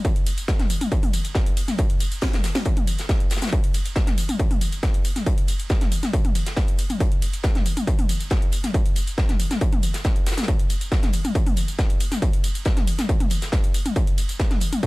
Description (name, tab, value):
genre	techno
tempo	138 BPM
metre	4/4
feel	straight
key	none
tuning	none
part	electronic kick drum	drums	0.0-14.9 s	none	-21 LUFS	equal	distortion
part	modern studio drum kit	drums	0.0-14.9 s	hi-hat, snare drum	-34 LUFS	left 1 dB	sidechain pumping on hats, high-pass filter on hats, high-pass filter on snare, high-pass filter on room
part	techno drum kit	drums	0.0-14.9 s	hi-hat, ride cymbal, snare drum, tambourine, toms	-27 LUFS	left 1 dB	none
room	studio ambience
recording	none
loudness	-20 LUFS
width	side -22 dB against mid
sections	0.0-14.9 A section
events	drum fill 2.2-2.7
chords	none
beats	0.05 0.48 | 0.92 1.35 1.79 2.22 | 2.66 3.09 3.53 3.96 | 4.40 4.83 5.26 5.70 | 6.13 6.57 7.00 7.44 | 7.87 8.31 8.74 9.18 | 9.61 10.05 10.48 10.92 | 11.35 11.79 12.22 12.66 | 13.09 13.53 13.96 14.40 | 14.83